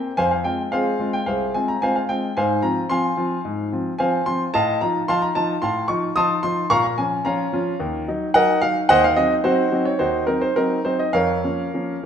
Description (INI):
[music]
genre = classical-period piano sonatina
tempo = 110 BPM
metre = 4/4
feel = rubato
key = F minor, Bb minor from 4.5 s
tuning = A4 = 443 Hz
[part]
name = warm grand piano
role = solo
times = 0.0-12.1 s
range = C2 to Eb6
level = -18 LUFS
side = equal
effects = none
[sound]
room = wet recital hall reverb, RT60 1.5 s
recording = none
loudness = -18 LUFS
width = side -8 dB against mid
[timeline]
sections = 0.0-12.1 A section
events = none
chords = 0.2 Fm; 2.4 Fm/Ab; 4.5 F7/A; 6.7 Bbm; 7.8 Ebm; 8.9 Cdim/Eb; 11.1 Bbm/F